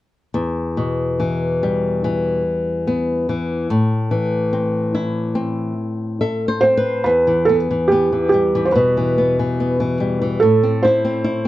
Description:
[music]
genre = children's music, lullaby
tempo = 72 BPM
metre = 4/4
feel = rubato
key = E minor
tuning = A4 = 442 Hz
[part]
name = flamenco guitar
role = accompaniment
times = 0.3-11.5 s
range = E2 to E5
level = -18 LUFS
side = left 2 dB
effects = none
[part]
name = felt-muted upright piano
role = melody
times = 6.6-11.5 s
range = G4 to C5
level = -16 LUFS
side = right 2 dB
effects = none
[sound]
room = light reverb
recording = worn, warbling old tape, cassette tape, warbly pitch drift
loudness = -16 LUFS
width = side -15 dB against mid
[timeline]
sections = 0.3-7.1 A section; 7.1-11.5 B section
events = nylon-string guitar fill 5.8-7.1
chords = 0.3 Em; 3.7 Am; 7.1 Em; 10.4 Am

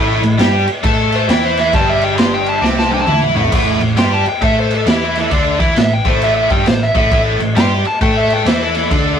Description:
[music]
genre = blues rock power trio and southern rock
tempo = 134 BPM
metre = 4/4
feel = swing 64% on 8ths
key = unclear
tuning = A4 = 438 Hz
[part]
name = overdriven slide guitar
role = melody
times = 0.0-9.2 s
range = E4 to C6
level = -18 LUFS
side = left 1 dB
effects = none
[part]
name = biting overdriven guitar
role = riff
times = 0.0-9.2 s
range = G2 to A4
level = -16 LUFS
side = equal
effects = none
[part]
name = hollow-body short-scale picked electric bass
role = bass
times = 0.0-9.2 s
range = G1 to A2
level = -20 LUFS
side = equal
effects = none
[part]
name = raw garage drum kit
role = drums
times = 0.2-9.0 s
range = crash cymbal, kick drum, snare drum, toms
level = -16 LUFS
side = equal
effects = none
[sound]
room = moderate small room reverb, RT60 0.5 s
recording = rough rehearsal-room recording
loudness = -11 LUFS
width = side -8 dB against mid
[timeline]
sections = 0.0-3.5 A section; 3.5-9.2 A section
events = electric slide guitar solo 0.0-9.2; drum fill 2.6-3.5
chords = 0.0 A5

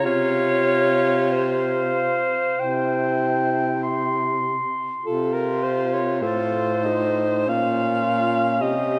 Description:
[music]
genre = classical, lyrical piece for single-reed quartet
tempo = 46-55 BPM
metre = 4/4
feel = rubato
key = unclear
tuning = A4 = 437 Hz
[part]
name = warm clarinet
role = melody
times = 0.0-9.0 s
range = F4 to C6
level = -29 LUFS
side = equal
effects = none
[part]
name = warm tenor saxophone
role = accompaniment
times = 0.0-9.0 s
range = Db4 to F4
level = -29 LUFS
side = equal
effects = none
[part]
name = warm baritone saxophone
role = bass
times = 0.0-9.0 s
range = A2 to C3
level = -28 LUFS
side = equal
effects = none
[part]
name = clear alto saxophone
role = second line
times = 0.1-9.0 s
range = A4 to F5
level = -25 LUFS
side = equal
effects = none
[sound]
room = wet concert hall reverb, RT60 2.5 s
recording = none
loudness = -22 LUFS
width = mono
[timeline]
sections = 0.0-9.0 A section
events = none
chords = 0.0 Csus4; 2.6 C; 5.0 F7/C; 7.5 Bbm

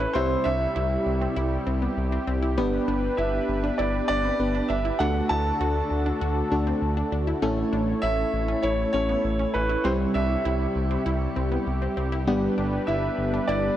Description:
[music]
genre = synth-pop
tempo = 99 BPM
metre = 4/4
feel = straight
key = G major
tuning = A4 = 440 Hz
[part]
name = warm concert grand piano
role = melody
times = 0.0-13.8 s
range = B4 to A5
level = -28 LUFS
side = right 1 dB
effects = shimmer reverb, tape echo
[part]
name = mellow FM electric piano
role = accompaniment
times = 0.0-13.8 s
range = G3 to E5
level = -28 LUFS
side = left 1 dB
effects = chorus, shimmer reverb
[part]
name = warm analog pad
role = sustained chords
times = 0.0-13.8 s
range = C3 to C#5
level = -31 LUFS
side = right 1 dB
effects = chorus, shimmer reverb
[part]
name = wide unison pluck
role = arpeggios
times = 0.0-13.7 s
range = B3 to F#4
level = -33 LUFS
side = moving between left 3 dB and right 6 dB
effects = auto-pan, shimmer reverb, tape echo
[part]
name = smooth synth bass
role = bass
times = 0.0-13.7 s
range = G1 to D2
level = -28 LUFS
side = equal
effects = none
[sound]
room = moderate lush hall reverb, RT60 2.5 s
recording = none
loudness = -22 LUFS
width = side -12 dB against mid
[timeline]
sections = 0.0-13.8 A section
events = none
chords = 0.2 C; 2.6 G; 5.0 D; 7.4 A; 9.8 C; 12.3 G

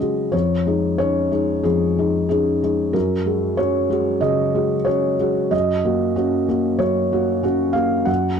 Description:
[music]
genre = neoclassical minimalist piano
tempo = 93 BPM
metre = 4/4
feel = rubato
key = unclear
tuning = A4 = 440 Hz
[part]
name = felt-muted upright piano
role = solo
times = 0.0-8.4 s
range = E#2 to F#5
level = -17 LUFS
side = equal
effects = none
[sound]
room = light reverb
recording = dark, warm production, nothing above 10.8 kHz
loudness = -17 LUFS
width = side -7 dB against mid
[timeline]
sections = 0.0-8.4 A section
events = none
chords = 0.3 C#add9/E#; 2.9 F#add9; 5.5 D#m7/F#

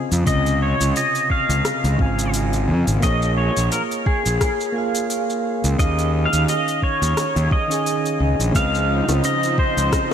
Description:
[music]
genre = sunset chillout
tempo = 87 BPM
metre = 4/4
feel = swing 56% on 16ths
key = Db major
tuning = A4 = 438 Hz
[part]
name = soft electric-piano-like synth keys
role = accompaniment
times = 0.0-10.1 s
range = C3 to Ab5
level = -24 LUFS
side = moving between left 3 dB and right 5 dB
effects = chorus, tremolo, auto-pan, vintage 12-bit sampler grit, diffuse ambient delay
[part]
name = fuzz fingered electric bass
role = bass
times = 0.1-9.9 s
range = Ab1 to F2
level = -20 LUFS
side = equal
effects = overdrive
[part]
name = smooth R&B drum kit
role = drums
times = 0.1-10.1 s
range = hi-hat, rim click, shaker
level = -29 LUFS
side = left 1 dB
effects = overdrive
[part]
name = pedal steel guitar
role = melody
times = 0.3-10.1 s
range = Ab4 to F5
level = -23 LUFS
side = left 1 dB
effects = analog chorus, ping-pong delay
[part]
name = electronic kick drum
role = drums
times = 0.3-10.1 s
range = none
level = -20 LUFS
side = equal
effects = overdrive
[part]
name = lush unison pad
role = sustained chords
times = 8.5-10.1 s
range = Db3 to Eb4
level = -25 LUFS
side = right 1 dB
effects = chorus
[part]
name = bongos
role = percussion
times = 9.1-10.1 s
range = none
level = -28 LUFS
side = left 6 dB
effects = none
[sound]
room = moderate lush hall reverb, RT60 2.8 s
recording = dreamy mix soaked in reverb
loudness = -17 LUFS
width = side -8 dB against mid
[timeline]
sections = 0.0-10.1 A section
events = none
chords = 0.0 Dbmaj9; 3.0 Bbm7; 5.8 Eb9sus4; 8.5 Dbmaj9

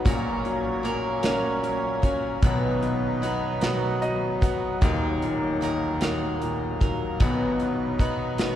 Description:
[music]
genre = six-eight pop ballad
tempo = 50 BPM (dotted quarters)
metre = 6/8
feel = straight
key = unclear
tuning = A4 = 440 Hz
[part]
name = clear baby grand piano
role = accompaniment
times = 0.0-8.6 s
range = D#1 to F#5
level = -28 LUFS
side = left 3 dB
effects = none
[part]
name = pedal harmonium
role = sustained chords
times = 0.0-8.6 s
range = A#2 to D#5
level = -29 LUFS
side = right 1 dB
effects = none
[part]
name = picked steel-string acoustic guitar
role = arpeggios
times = 0.0-8.6 s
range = B2 to B4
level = -29 LUFS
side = right 1 dB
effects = none
[part]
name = modern studio drum kit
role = drums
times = 0.1-8.6 s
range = hi-hat, kick drum, snare drum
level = -27 LUFS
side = equal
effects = none
[sound]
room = wet cathedral reverb, RT60 6.5 s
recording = recorded in a church or concert hall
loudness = -23 LUFS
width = side -11 dB against mid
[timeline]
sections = 0.0-8.6 A section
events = grand piano fill 3.6-4.8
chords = 0.1 F#/A#; 2.4 B; 4.8 D#m; 7.2 B

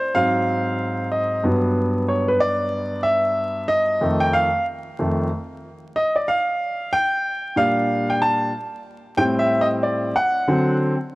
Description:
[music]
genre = hip hop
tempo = 93 BPM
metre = 4/4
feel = swing 61% on 16ths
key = unclear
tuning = A4 = 440 Hz
[part]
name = warm baby grand piano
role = solo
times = 0.0-10.9 s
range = F2 to A5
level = -18 LUFS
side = equal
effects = none
[sound]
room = moderate plate reverb, RT60 3.2 s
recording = worn, warbling old tape, cassette tape, vinyl crackle, warbly pitch drift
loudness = -18 LUFS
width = side -21 dB against mid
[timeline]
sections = 0.0-11.2 A section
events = grand piano solo 0.0-11.2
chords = 0.1 Ab7; 1.4 Gmaj7; 4.0 F7; 6.6 Bb6; 9.2 Am7; 10.5 D7

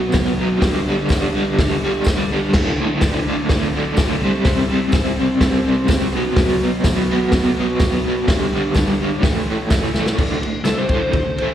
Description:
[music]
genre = garage rock duo or trio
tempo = 125 BPM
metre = 4/4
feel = straight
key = D mixolydian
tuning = A4 = 440 Hz
[part]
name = overdriven electric guitar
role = riff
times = 0.0-11.5 s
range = D2 to C4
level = -18 LUFS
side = equal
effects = tremolo, slapback echo
[part]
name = vintage drum kit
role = drums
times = 0.1-11.5 s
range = crash cymbal, hi-hat, kick drum, ride cymbal, snare drum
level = -20 LUFS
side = equal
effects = none
[part]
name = tambourine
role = percussion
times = 0.1-10.8 s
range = none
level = -38 LUFS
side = right 2 dB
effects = none
[part]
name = overdriven slide guitar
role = melody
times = 10.6-11.5 s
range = A4 to C5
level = -22 LUFS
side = left 2 dB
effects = slapback echo
[sound]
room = light reverb, small room ambience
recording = live gig heard through the venue's PA, recital hall reverb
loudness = -15 LUFS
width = side -10 dB against mid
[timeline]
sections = 0.0-10.2 A section; 10.2-11.5 B section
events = drum fill 10.0; electric slide guitar solo 10.2-11.5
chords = 0.0 B5; 0.6 G5; 2.5 D5; 4.2 C5; 6.1 B5; 8.3 G5; 9.2 A5; 10.2 D5

